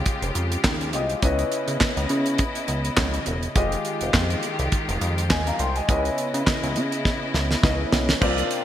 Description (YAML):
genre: early-eighties boogie funk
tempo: 103 BPM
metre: 4/4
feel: swing 56% on 16ths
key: unclear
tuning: A4 = 440 Hz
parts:
  - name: clear grand piano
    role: accompaniment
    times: 0.0-8.6 s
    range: Ab3 to C6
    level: -28 LUFS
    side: left 2 dB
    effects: lush chorus
  - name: rich studio string section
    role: sustained chords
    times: 0.0-8.6 s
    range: C3 to Eb5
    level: -29 LUFS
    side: left 1 dB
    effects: none
  - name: chorused synth bass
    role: bass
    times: 0.0-8.4 s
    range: Fb1 to Db3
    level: -25 LUFS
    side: equal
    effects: none
  - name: damped 70s drum kit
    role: drums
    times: 0.1-8.6 s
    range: crash cymbal, handclaps, hi-hat, kick drum, snare drum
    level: -23 LUFS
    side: right 1 dB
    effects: gated reverb
room: light reverb, small room ambience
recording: bright 1980s-style digital production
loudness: -20 LUFS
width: side -11 dB against mid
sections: 0.0-8.2 A section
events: drum fill 7.1-8.2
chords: 0.0 Fm9; 1.2 Dbm9; 3.6 Fm9; 5.9 Dbm9